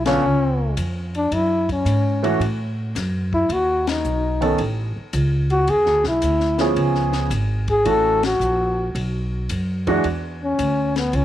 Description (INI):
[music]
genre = jazz, small-group swing and bop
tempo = 110 BPM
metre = 4/4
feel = swing 68% on 8ths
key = E mixolydian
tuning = A4 = 440 Hz
[part]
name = warm trombone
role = melody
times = 0.0-11.2 s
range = B3 to A4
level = -20 LUFS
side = left 1 dB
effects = none
[part]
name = upright bass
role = bass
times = 0.0-11.2 s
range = G#1 to A2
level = -22 LUFS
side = equal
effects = none
[part]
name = warm baby grand piano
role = accompaniment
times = 0.1-10.0 s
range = D3 to A4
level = -22 LUFS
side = right 3 dB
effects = none
[part]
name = compact cocktail drum kit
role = drums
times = 0.1-11.2 s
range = hi-hat, kick drum, ride cymbal, snare drum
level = -32 LUFS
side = left 5 dB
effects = none
[sound]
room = light reverb, studio ambience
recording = 1960s-style stereo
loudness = -18 LUFS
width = side -12 dB against mid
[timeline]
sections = 0.0-10.0 A section; 10.0-11.2 A section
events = band accent 0.0, 3.8, 8.1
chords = 0.2 C#; 1.3 F#m7; 3.5 B9; 5.7 E7; 6.8 C#7; 7.9 F#m7; 8.9 B5; 10.0 E5